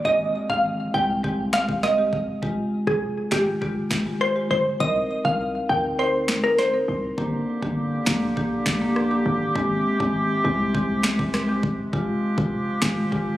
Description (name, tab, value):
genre	dancehall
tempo	101 BPM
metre	4/4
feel	straight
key	unclear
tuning	A4 = 442 Hz
part	marimba with medium mallets	accompaniment	0.0-13.3 s	Ab3 to Bb4	-25 LUFS	left 1 dB	none
part	downlifter	sound effects	0.0-2.4 s	none	-45 LUFS	right 2 dB	none
part	glassy wavetable pluck	melody	0.1-7.0 s	G4 to G5	-22 LUFS	equal	chorus, ping-pong delay
part	hard-hitting 808-style bass	bass	0.1-13.4 s	F1 to D2	-32 LUFS	equal	none
part	island pop drum kit	drums	0.1-13.3 s	finger snaps, kick drum, rim click, snare drum	-27 LUFS	equal	overdrive
part	warm woodwind section	sustained chords	7.2-13.4 s	C3 to G4	-27 LUFS	right 1 dB	sidechain pumping
room	light reverb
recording	recorded on a phone in the room, club reverb, compression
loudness	-21 LUFS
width	side -14 dB against mid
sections	0.0-13.4 A section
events	kick muted 6.0-7.2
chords	0.1 Abmaj7; 2.4 Fmadd9; 4.8 Cm7; 7.2 Gm; 9.6 Abmaj7; 11.9 Fmadd9